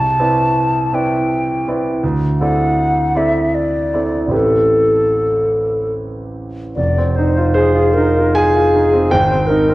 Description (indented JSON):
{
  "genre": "classical, impressionist duo for flute and grand piano",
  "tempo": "72-83 BPM",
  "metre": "3/4",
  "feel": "rubato",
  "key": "A dorian",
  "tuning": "A4 = 439 Hz",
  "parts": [
    { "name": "hollow concert flute", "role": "melody", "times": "0.0-9.7 s", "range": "Ab4 to A5", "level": "-16 LUFS", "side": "left 1 dB", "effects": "none" },
    { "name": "clear concert grand piano", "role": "accompaniment", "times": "0.0-9.7 s", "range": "F1 to Ab5", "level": "-15 LUFS", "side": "right 1 dB", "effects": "none" }
  ],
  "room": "wet recital hall reverb, RT60 1.4 s",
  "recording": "worn, warbling old tape, cassette tape, warbly pitch drift",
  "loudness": "-13 LUFS",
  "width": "side -18 dB against mid",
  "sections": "0.0-6.8 A section; 6.8-9.7 B section",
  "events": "none",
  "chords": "0.0 Cmaj9; 2.0 D9; 4.3 Am9; 6.8 Fm7; 9.1 Abmaj9"
}